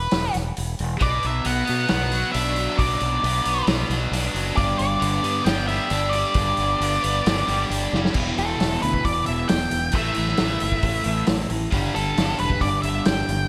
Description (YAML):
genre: classic rock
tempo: 134 BPM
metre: 4/4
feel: straight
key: E minor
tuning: A4 = 440 Hz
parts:
  - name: octave-fuzz lead guitar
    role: melody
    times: 0.0-13.5 s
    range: A4 to G5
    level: -27 LUFS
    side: equal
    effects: distortion, slapback echo, digital delay
  - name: growling fingered electric bass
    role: bass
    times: 0.0-13.4 s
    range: E1 to B2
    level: -29 LUFS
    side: equal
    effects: overdrive
  - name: vintage drum kit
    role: drums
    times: 0.1-13.4 s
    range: crash cymbal, hi-hat, kick drum, snare drum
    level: -28 LUFS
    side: equal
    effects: none
  - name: biting overdriven guitar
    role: riff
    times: 1.0-13.5 s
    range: E2 to D4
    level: -30 LUFS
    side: equal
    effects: none
  - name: cranked stack guitar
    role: riff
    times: 1.0-13.5 s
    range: E2 to G4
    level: -32 LUFS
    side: equal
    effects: overdrive, phaser, slapback echo
room: moderate lush hall reverb, RT60 1.7 s, small room ambience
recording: big arena sound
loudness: -22 LUFS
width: mono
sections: 0.0-8.2 A section; 8.2-13.5 B section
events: half time 0.0-8.2; drum fill 7.9; lead electric guitar solo 8.2-13.5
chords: 0.0 E5; 1.0 Bm; 4.6 G; 8.2 Em; 9.9 A5; 11.7 G5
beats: 0.13 0.57 | 1.02 1.46 1.91 2.35 | 2.80 3.25 3.69 4.14 | 4.58 5.03 5.48 5.92 | 6.37 6.82 7.26 7.71 | 8.16 8.60 9.05 9.50 | 9.94 10.39 10.84 11.28 | 11.73 12.18 12.62 13.07